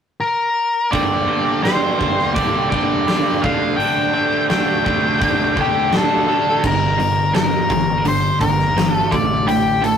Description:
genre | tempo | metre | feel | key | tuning
classic rock | 84 BPM | 4/4 | straight | G minor | A4 = 440 Hz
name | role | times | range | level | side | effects
octave-fuzz lead guitar | melody | 0.2-10.0 s | G4 to G5 | -18 LUFS | left 2 dB | distortion
overdriven electric guitar | riff | 0.9-10.0 s | G2 to D4 | -20 LUFS | right 4 dB | none
sludgy distorted guitar | riff | 0.9-10.0 s | G2 to Bb4 | -25 LUFS | left 3 dB | overdrive
huge arena drum kit | drums | 0.9-10.0 s | crash cymbal, hi-hat, kick drum, snare drum | -22 LUFS | equal | none
growling picked electric bass | bass | 6.6-10.0 s | G1 to A1 | -24 LUFS | equal | overdrive
room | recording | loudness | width
moderate small room reverb, RT60 0.5 s | rough rehearsal-room recording, tube saturation | -15 LUFS | side -7 dB against mid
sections
0.9-6.6 A section; 6.6-10.0 B section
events
none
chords
0.0 N.C.; 0.9 Gm; 3.4 Dsus4/A; 6.6 Gm; 9.1 D5/A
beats
0.21 | 0.93 1.65 2.36 3.08 | 3.79 4.50 5.21 5.93 | 6.64 7.35 8.06 8.76 | 9.47

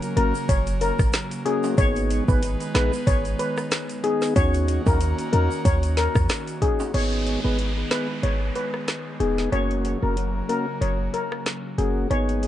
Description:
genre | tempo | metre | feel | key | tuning
dancehall | 93 BPM | 4/4 | swing 56% on 16ths | G# minor | A4 = 441 Hz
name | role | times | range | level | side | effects
airy breathy pad | sustained chords | 0.0-12.5 s | C#3 to F#4 | -32 LUFS | right 1 dB | chorus, sidechain pumping
afro-pop drum kit | drums | 0.0-12.5 s | crash cymbal, hi-hat, kick drum, rim click, snare drum | -25 LUFS | equal | none
tube shaker and timbales | percussion | 0.0-6.9 s | none | -39 LUFS | right 5 dB | none
steel pan | melody | 0.2-12.3 s | G#4 to C#5 | -27 LUFS | left 3 dB | tape echo
mellow tonewheel organ | accompaniment | 0.2-12.5 s | A#3 to G#4 | -28 LUFS | left 1 dB | slow rotary speaker, tape echo
clean 808-style bass | bass | 0.2-12.5 s | E1 to E2 | -24 LUFS | equal | none
downlifter | sound effects | 6.9-12.1 s | none | -36 LUFS | equal | none
room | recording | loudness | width
light reverb | echo-heavy mix, nothing above 10.3 kHz | -21 LUFS | side -12 dB against mid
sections
0.0-6.9 A section; 6.9-12.5 B section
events
break 6.9-12.5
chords
0.0 F#; 1.8 G#m; 4.4 D#m7; 6.9 G#m; 9.5 F#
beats
0.49 1.14 | 1.78 2.43 3.07 3.72 | 4.36 5.01 5.65 6.30 | 6.94 7.59 8.23 8.88 | 9.52 10.17 10.81 11.46 | 12.10

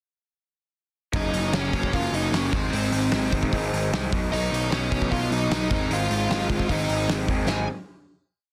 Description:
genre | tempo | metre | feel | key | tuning
punk rock | 151 BPM | 4/4 | straight | unclear | A4 = 440 Hz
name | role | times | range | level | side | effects
overdriven semi-hollow guitar | riff | 1.1-7.6 s | Gb2 to B3 | -34 LUFS | equal | none
raw garage guitar | riff | 1.1-7.6 s | Gb2 to Eb4 | -32 LUFS | equal | overdrive
fuzz picked electric bass | bass | 1.1-7.7 s | Gb1 to C2 | -31 LUFS | equal | overdrive
loose indie drum kit | drums | 1.1-7.6 s | crash cymbal, hi-hat, kick drum, snare drum | -30 LUFS | equal | none
dark smooth lead guitar | melody | 1.2-7.7 s | C4 to Ab5 | -30 LUFS | equal | overdrive
room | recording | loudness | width
light reverb | dense, heavily limited modern master | -24 LUFS | mono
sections
1.1-7.5 verse; 7.5-8.5 final chord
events
none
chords
1.1 Gb; 2.5 Ab; 4.1 B; 5.7 Ab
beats
| 1.13 1.53 1.93 2.33 | 2.73 3.12 3.52 3.92 | 4.32 4.71 5.11 5.50 | 5.90 6.29 6.69 7.08 | 7.47

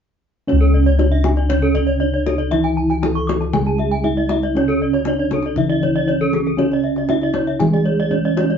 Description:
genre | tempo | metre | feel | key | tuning
Balinese gamelan | 118 BPM | 4/4 | straight | C# pelog | A4 = 440 Hz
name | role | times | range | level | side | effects
gamelan-type bronze metallophone | melody | 0.5-8.6 s | C#4 to A4-20c | -21 LUFS | right 4 dB | none
gamelan-type bronze metallophone | accompaniment | 0.5-8.6 s | C#3 to G#3-30c | -25 LUFS | left 1 dB | none
gamelan-type bronze metallophone | arpeggios | 0.5-8.6 s | G#4-30c to D6+20c | -25 LUFS | left 7 dB | none
gamelan-type bossed gongs | bass | 0.5-8.6 s | C#2 to E4-30c | -19 LUFS | left 1 dB | none
kendang | percussion | 0.5-8.6 s | none | -26 LUFS | left 4 dB | none
gamelan-type bronze metallophone | arpeggios | 0.6-8.4 s | A4-20c to C#6 | -25 LUFS | right 1 dB | none
room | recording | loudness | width
light reverb | band playing live in one room, nothing above 7.5 kHz | -15 LUFS | side -7 dB against mid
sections
0.5-8.6 A section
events
none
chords
none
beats
| 0.49 1.00 1.50 2.01 | 2.52 3.03 3.54 4.05 | 4.56 5.06 5.57 6.08 | 6.59 7.10 7.61 8.12

